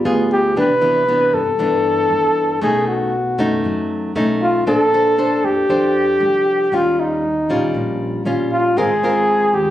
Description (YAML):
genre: bossa nova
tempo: 117 BPM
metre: 4/4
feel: straight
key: unclear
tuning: A4 = 440 Hz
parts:
  - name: mellow tine electric piano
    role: accompaniment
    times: 0.0-0.6 s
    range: B3 to Ab4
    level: -22 LUFS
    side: right 4 dB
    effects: medium stereo tremolo
  - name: nylon-string guitar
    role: accompaniment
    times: 0.0-9.7 s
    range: G2 to C5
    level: -19 LUFS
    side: left 1 dB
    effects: none
  - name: upright bass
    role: bass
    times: 0.1-9.7 s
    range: Ab1 to G2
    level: -29 LUFS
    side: right 1 dB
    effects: none
  - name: mellow flugelhorn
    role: melody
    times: 0.3-9.7 s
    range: Eb4 to B4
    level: -16 LUFS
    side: equal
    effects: plate reverb
room: light reverb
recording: recorded on a phone in the room, club reverb, compression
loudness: -14 LUFS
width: side -12 dB against mid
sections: 0.6-9.7 A section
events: none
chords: 0.0 G7b9; 0.6 Cmaj9; 2.6 B9; 4.7 Bbmaj9; 6.7 Eb9; 8.8 Ab69